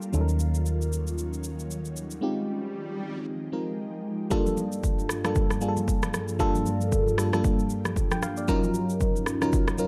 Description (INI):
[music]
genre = amapiano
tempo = 115 BPM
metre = 4/4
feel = swing 58% on 16ths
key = unclear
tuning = A4 = 440 Hz
[part]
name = mellow FM electric piano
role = accompaniment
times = 0.0-9.9 s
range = Gb3 to G5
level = -30 LUFS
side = equal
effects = chorus, phaser, low-pass filter
[part]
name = ethereal airy pad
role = sustained chords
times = 0.0-9.9 s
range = Eb2 to A4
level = -36 LUFS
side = equal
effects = ensemble chorus, built-in reverb, phaser, sidechain pumping, low-pass filter
[part]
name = afro-pop drum kit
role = drums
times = 0.0-9.9 s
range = kick drum, rim click, shaker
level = -30 LUFS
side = equal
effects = none
[part]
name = hollow-body short-scale fingered electric bass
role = bass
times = 0.1-2.2 s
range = Eb2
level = -29 LUFS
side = equal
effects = none
[part]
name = swell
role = sound effects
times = 2.2-3.3 s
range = none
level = -42 LUFS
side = equal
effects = none
[part]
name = congas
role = percussion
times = 4.3-9.7 s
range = none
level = -39 LUFS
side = equal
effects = none
[sound]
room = little or no reverb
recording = dark, warm production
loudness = -27 LUFS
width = mono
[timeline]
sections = 0.0-4.3 A section; 4.3-9.9 B section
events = swell 2.2-4.3; break 2.2-4.3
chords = 0.1 Ebm9; 2.2 Fm9; 4.3 Gm9; 8.5 Ebm9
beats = | 0.14 0.66 1.18 1.70 | 2.22 2.75 3.27 3.79 | 4.31 4.83 5.36 5.88 | 6.40 6.92 7.44 7.96 | 8.48 9.01 9.53